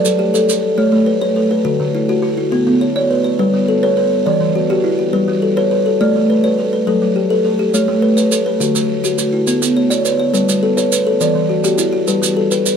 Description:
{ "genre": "southern african traditional, mbira-style interlocking cycle", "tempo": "138 BPM (dotted quarters)", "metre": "12/8", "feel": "straight", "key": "A mixolydian", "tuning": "A4 = 441 Hz", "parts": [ { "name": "buzzing kalimba", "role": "arpeggios", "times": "0.0-12.8 s", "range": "D3 to D5", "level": "-17 LUFS", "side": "right 6 dB", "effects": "none" }, { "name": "kalimba", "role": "arpeggios", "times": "0.0-12.8 s", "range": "D3 to D5", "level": "-15 LUFS", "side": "left 4 dB", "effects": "none" }, { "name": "maracas", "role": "percussion", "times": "0.1-0.6, 7.7-12.8 s", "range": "none", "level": "-20 LUFS", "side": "right 8 dB", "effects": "none" } ], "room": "light reverb", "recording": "none", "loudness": "-13 LUFS", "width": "side -7 dB against mid", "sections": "0.8-12.8 A section", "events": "none", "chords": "0.0 F#m; 0.8 A; 1.7 D; 2.5 Bm; 3.4 G; 4.3 Em; 5.1 G; 6.0 A; 6.9 F#m; 7.7 A; 8.6 D; 9.5 Bm; 10.3 G; 11.2 Em; 12.1 G" }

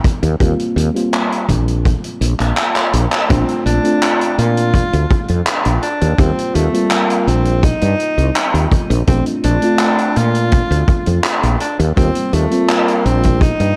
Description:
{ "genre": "vaporwave", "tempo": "83 BPM", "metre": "4/4", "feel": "straight", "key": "Bb major", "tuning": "A4 = 440 Hz", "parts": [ { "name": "mellow FM electric piano", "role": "accompaniment", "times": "0.0-13.8 s", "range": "G3 to F4", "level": "-22 LUFS", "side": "equal", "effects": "lush chorus" }, { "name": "kick drum", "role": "drums", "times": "0.0-13.6 s", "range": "none", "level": "-18 LUFS", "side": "equal", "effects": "none" }, { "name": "street-band drum kit", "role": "drums", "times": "0.0-13.7 s", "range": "handclaps, hi-hat", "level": "-22 LUFS", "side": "equal", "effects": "none" }, { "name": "woody fretless electric bass", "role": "bass", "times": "0.2-13.7 s", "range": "Bb1 to Bb2", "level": "-18 LUFS", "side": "equal", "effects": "none" }, { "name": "clear tenor saxophone", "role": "melody", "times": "3.3-13.8 s", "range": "A3 to F4", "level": "-23 LUFS", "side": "equal", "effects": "vintage 12-bit sampler grit, tape echo" } ], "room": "small room reverb", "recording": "none", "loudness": "-15 LUFS", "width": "mono", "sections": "0.0-3.3 A section; 3.3-13.8 B section", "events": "drum fill 2.8-3.3; band accent 3.1-3.5", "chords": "0.0 Eb69 (rootless); 3.3 Bbmaj9; 5.8 Eb69; 9.1 Bbmaj9; 11.6 Eb69" }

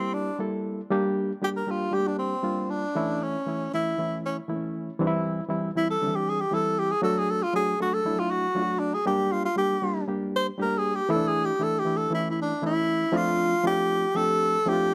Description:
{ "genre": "soul", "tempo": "118 BPM", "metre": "4/4", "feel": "straight", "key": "D minor", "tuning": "A4 = 439 Hz", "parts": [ { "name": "breathy tenor saxophone", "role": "melody", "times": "0.0-14.9 s", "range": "C4 to C5", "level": "-28 LUFS", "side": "equal", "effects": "none" }, { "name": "barky reed electric piano", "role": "accompaniment", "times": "0.0-14.9 s", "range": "D3 to A4", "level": "-30 LUFS", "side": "equal", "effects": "overdrive" } ], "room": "light reverb, small room ambience", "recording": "none", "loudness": "-26 LUFS", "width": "mono", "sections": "0.0-13.1 A section; 13.1-14.9 B section", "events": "tenor saxophone solo 0.0-13.1", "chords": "0.0 Edim; 0.9 Gm; 3.0 A; 5.0 C; 7.0 D; 9.1 Gm; 11.1 Asus4; 12.1 A; 13.1 Dm7" }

